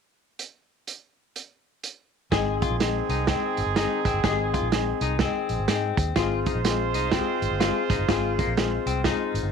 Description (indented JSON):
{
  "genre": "uptempo 1960s-style soul",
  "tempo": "125 BPM",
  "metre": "4/4",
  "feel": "swing 62% on 8ths",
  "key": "Ab major",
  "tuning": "A4 = 438 Hz",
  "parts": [
    { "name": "vintage drum kit", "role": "drums", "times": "0.4-9.4 s", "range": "hi-hat, kick drum, snare drum", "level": "-27 LUFS", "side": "right 5 dB", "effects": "none" },
    { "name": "warm horn section", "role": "second line", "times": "2.3-9.5 s", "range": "Eb3 to C5", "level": "-30 LUFS", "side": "right 14 dB", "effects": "none" },
    { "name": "dark upright piano", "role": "accompaniment", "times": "2.3-9.4 s", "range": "C4 to Ab4", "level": "-28 LUFS", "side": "left 16 dB", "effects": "none" },
    { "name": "clean electric guitar", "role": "riff", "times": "2.3-9.5 s", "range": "Bb3 to Ab4", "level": "-31 LUFS", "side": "left 12 dB", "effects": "none" },
    { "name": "vintage muted fingered electric bass", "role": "bass", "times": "2.3-9.5 s", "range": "G1 to Ab2", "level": "-29 LUFS", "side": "equal", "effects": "none" }
  ],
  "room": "light reverb, small room ambience",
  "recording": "1960s-style stereo with parts hard left and right",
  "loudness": "-22 LUFS",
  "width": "side -6 dB against mid",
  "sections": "0.4-2.3 A section; 2.3-9.5 B section",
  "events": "none",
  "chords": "0.4 N.C.; 2.3 Ab"
}